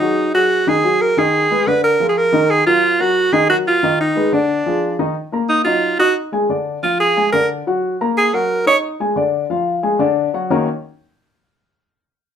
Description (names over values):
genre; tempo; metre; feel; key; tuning
jazz; 180 BPM; 4/4; straight; Eb minor; A4 = 440 Hz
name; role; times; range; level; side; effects
bright alto saxophone; melody; 0.0-8.8 s; D4 to Db5; -14 LUFS; right 2 dB; none
dark upright piano; accompaniment; 0.0-10.7 s; D3 to Eb6; -18 LUFS; left 2 dB; none
room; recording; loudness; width
moderate studio ambience, RT60 0.5 s; none; -14 LUFS; side -8 dB against mid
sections
0.0-5.2 A section; 5.2-10.5 B section; 10.5-11.8 C section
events
alto saxophone solo 5.2-10.5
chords
0.0 Ab5; 1.2 Abm; 1.8 Bb7; 2.5 Ebmadd9; 3.8 Abm6; 4.5 Ddim; 5.2 Ebm; 6.5 Ddim; 7.8 Ebm; 9.2 Ddim; 10.5 Ebm7